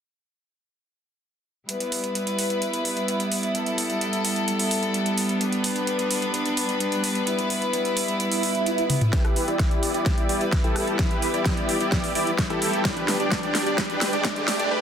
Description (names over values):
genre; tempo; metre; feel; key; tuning
EDM, festival progressive house; 129 BPM; 4/4; straight; unclear; A4 = 442 Hz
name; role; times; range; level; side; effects
rich chamber string section; sustained chords; 1.7-14.7 s; G3 to B4; -25 LUFS; equal; sidechain pumping, low-pass filter
big-room dance drum kit; drums; 1.7-14.7 s; hi-hat, rim click, snare drum, toms; -27 LUFS; equal; overdrive
swell and riser; sound effects; 8.3-14.7 s; none; -33 LUFS; right 3 dB; none
dense compressed supersaw; riff; 9.1-14.8 s; D4 to D5; -25 LUFS; equal; sidechain pumping, low-pass filter, tape echo
electronic kick drum; drums; 9.1-14.3 s; none; -25 LUFS; equal; overdrive
room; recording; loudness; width
light reverb, digital ambience; dense, heavily limited modern master, high-pass filter; -21 LUFS; side -8 dB against mid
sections
1.7-9.1 A section; 9.1-14.8 B section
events
swell 8.3-9.1; drum fill 8.9, 9.1-14.7; build-up 9.1-14.8; filter sweep on supersaw synth 9.1-14.8; filter sweep 9.1-14.8; riser 9.2-14.7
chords
1.7 Em; 5.4 G; 9.1 Em; 12.8 G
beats
| 1.69 2.15 2.62 3.08 | 3.55 4.01 4.48 4.94 | 5.41 5.87 6.34 6.80 | 7.27 7.73 8.20 8.66 | 9.13 9.60 10.06 10.53 | 10.99 11.46 11.92 12.38 | 12.85 13.31 13.78 14.25 | 14.71